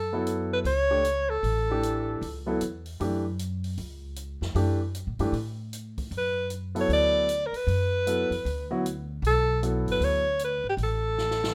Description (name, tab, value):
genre	modal jazz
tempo	154 BPM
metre	4/4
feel	swing 64% on 8ths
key	F# phrygian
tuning	A4 = 440 Hz
part	breathy alto saxophone	melody	0.0-2.5, 6.2-11.5 s	G4 to D5	-28 LUFS	equal	none
part	upright bass	bass	0.0-11.5 s	G1 to A2	-33 LUFS	equal	none
part	warm concert grand piano	accompaniment	0.1-10.2 s	E3 to C#5	-32 LUFS	equal	none
part	open jazz drum kit	drums	0.3-11.5 s	hi-hat, kick drum, snare drum	-43 LUFS	equal	none
room	light reverb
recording	none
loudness	-27 LUFS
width	mono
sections	0.0-11.5 A section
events	drum fill 11.2-11.5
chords	0.0 F#m7; 6.1 Gadd9 (rootless); 10.8 A5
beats	0.27 0.66 1.05 | 1.44 1.83 2.22 2.61 | 3.00 3.39 3.78 4.17 | 4.56 4.95 5.34 5.73 | 6.12 6.51 6.90 7.29 | 7.68 8.06 8.45 8.84 | 9.23 9.62 10.00 10.39 | 10.78 11.17